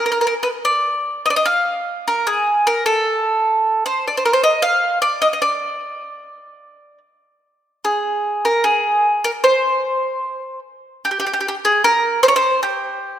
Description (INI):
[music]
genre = fado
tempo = 75 BPM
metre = 2/4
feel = rubato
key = unclear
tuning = A4 = 440 Hz
[part]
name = bowl-back mandolin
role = solo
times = 0.0-13.2 s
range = G4 to F5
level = -16 LUFS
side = equal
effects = none
[sound]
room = moderate concert hall reverb, RT60 2.3 s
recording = minimal, uncompressed stereo recording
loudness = -15 LUFS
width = side -10 dB against mid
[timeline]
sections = 0.0-7.8 A section; 7.8-13.2 B section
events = none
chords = none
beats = 0.61 | 1.43 2.24 | 3.04 3.83 | 4.61 5.39 | 6.19 7.00 | 7.83 8.64 | 9.45 10.24 | 11.02 11.80 | 12.60